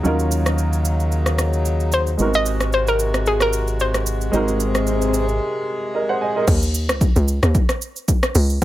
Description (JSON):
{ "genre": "amapiano", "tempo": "112 BPM", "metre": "4/4", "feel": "swing 55% on 16ths", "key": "unclear", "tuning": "A4 = 440 Hz", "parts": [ { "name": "warm concert grand piano", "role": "accompaniment", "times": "0.0-6.6 s", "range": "Gb3 to Ab5", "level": "-24 LUFS", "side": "right 2 dB", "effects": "low-pass filter" }, { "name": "accordion", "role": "sustained chords", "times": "0.0-6.5 s", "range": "C3 to Ab4", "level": "-26 LUFS", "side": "left 1 dB", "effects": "sidechain pumping, low-pass filter" }, { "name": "fingered electric bass with an envelope filter", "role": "bass", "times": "0.0-5.4 s", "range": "Ab1 to Eb2", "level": "-21 LUFS", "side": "equal", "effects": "none" }, { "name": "deep house drum kit", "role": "drums", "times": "0.0-8.6 s", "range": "crash cymbal, hi-hat, kick drum, rim click, shaker", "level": "-21 LUFS", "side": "equal", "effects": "none" }, { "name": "hollow square pluck", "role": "melody", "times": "1.9-4.2 s", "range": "Ab4 to Eb5", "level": "-21 LUFS", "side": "equal", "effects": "chorus, low-pass filter, tape echo" }, { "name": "swell", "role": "sound effects", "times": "3.8-5.4 s", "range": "none", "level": "-28 LUFS", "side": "left 4 dB", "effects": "none" }, { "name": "tight log drum bass", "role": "bass", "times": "6.5-8.6 s", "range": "Db2 to Eb2", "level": "-17 LUFS", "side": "equal", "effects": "none" } ], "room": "light reverb, digital ambience", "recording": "none", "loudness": "-17 LUFS", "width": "side -15 dB against mid", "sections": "0.0-6.5 A section; 6.5-8.6 B section", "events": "filter sweep 0.0-6.5; swell 3.8-6.5; break 5.4-6.5; drop 6.5-8.6", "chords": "0.0 Ebm7; 2.2 Ab7; 6.5 Dbsus2" }